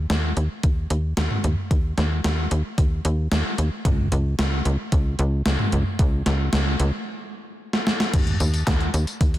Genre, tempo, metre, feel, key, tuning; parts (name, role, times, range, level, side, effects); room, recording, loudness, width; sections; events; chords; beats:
synthwave; 112 BPM; 4/4; straight; A4 = 440 Hz
tight sequencer bass; bass; 0.0-9.4 s; Db2 to Eb2; -22 LUFS; equal
gated 80s digital drum machine; drums; 0.1-9.4 s; crash cymbal, handclaps, hi-hat, snare drum, tambourine, toms; -25 LUFS; equal; gated reverb, gated reverb snare, overdrive
electronic kick drum; drums; 0.6-9.3 s; -20 LUFS; equal; overdrive
light reverb; dense, heavily limited modern master; -20 LUFS; side -14 dB against mid
0.0-8.1 A section; 8.1-9.4 B section
stop 7.1-8.1; drum fill 7.7-8.1
0.10 0.64 1.17 | 1.71 2.24 2.78 3.31 | 3.85 4.39 4.92 5.46 | 5.99 6.53 7.07 7.60 | 8.14 8.67 9.21